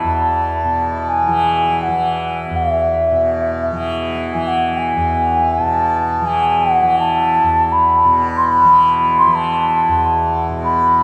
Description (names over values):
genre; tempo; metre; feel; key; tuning
indian classical, Hindustani; 82 BPM; 4/4; straight; E major; A4 = 440 Hz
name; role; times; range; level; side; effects
mellow bansuri; melody; 0.0-11.0 s; E5 to C6; -16 LUFS; equal; none
tanpura; drone; 0.0-11.0 s; E2 to E3; -24 LUFS; equal; none
room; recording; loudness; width
wet cathedral reverb, RT60 5.0 s; in a vast, echoing space; -16 LUFS; mono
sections
0.0-11.0 A section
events
none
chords
none